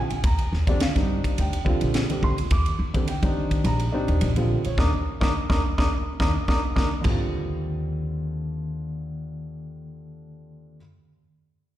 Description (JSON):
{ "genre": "electric jazz fusion", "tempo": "106 BPM", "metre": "4/4", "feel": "swing 53% on 16ths", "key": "Eb major", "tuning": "A4 = 435 Hz", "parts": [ { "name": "dark baby grand piano", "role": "accompaniment", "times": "0.0-10.8 s", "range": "D3 to Eb6", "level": "-27 LUFS", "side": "equal", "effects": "plate reverb, slapback echo" }, { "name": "upright bass", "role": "bass", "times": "0.1-10.8 s", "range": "Bb1 to Eb3", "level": "-26 LUFS", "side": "equal", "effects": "none" }, { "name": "crisp fusion drum kit", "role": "drums", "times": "0.1-7.2 s", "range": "kick drum, ride cymbal, snare drum, splash cymbal, toms", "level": "-26 LUFS", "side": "equal", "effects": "none" } ], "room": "light reverb", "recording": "live gig heard through the venue's PA, recital hall reverb", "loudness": "-22 LUFS", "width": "side -13 dB against mid", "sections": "0.0-7.1 A section; 7.1-9.3 B section", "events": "band accent 4.8-7.1; drum fill 6.5-7.1", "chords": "0.0 Ebmaj9" }